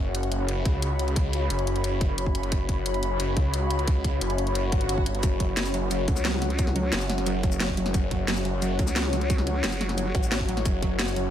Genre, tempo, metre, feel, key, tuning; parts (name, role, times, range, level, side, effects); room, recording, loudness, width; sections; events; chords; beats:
dark technical drum and bass; 177 BPM; 4/4; straight; A4 = 439 Hz
snarling distorted saw bass; bass; 0.0-11.3 s; F#1 to C#2; -28 LUFS; equal; distortion, tube saturation
airy breathy pad; texture; 0.0-11.3 s; C#4 to B5; -30 LUFS; left 3 dB; chorus, sidechain pumping
drum and bass drum kit; drums; 0.1-11.2 s; hi-hat, shaker, snare drum; -30 LUFS; left 1 dB; overdrive, studio reverb
electronic kick drum; drums; 0.7-10.9 s; -26 LUFS; equal; overdrive, studio reverb
swell; sound effects; 4.6-5.2 s; -34 LUFS; equal
wide unison pluck; arpeggios; 5.2-11.2 s; F#3 to F#4; -32 LUFS; right 3 dB; sidechain pumping, ping-pong delay
vowel-sweep wobble bass; bass; 6.1-10.1 s; F#1 to C#2; -27 LUFS; equal; chorus, tube saturation
light reverb; -23 LUFS; side -10 dB against mid
0.0-11.3 A section
swell 4.6-5.2
0.0 F#5
0.15 0.48 0.82 | 1.16 1.50 1.84 2.18 | 2.52 2.86 3.20 3.54 | 3.88 4.21 4.55 4.89 | 5.23 5.57 5.91 6.25 | 6.59 6.93 7.26 7.60 | 7.94 8.28 8.62 8.96 | 9.30 9.64 9.98 10.32 | 10.65 10.99